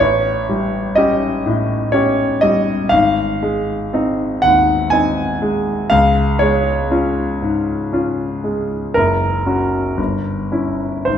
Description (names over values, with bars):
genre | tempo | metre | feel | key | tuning
classical, romantic nocturne for solo piano | 60 BPM | 3/4 | uneven beats, rubato | Db major | A4 = 440 Hz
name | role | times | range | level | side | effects
clear grand piano | solo | 0.0-11.2 s | Gb1 to Ab5 | -14 LUFS | equal | none
room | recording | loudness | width
wet recital hall reverb, RT60 1.8 s | minimal, uncompressed stereo recording | -15 LUFS | side -9 dB against mid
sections
0.0-11.2 A section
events
none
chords
0.0 A7; 2.9 Ab; 5.9 Db; 9.0 Gb; 10.0 Gdim7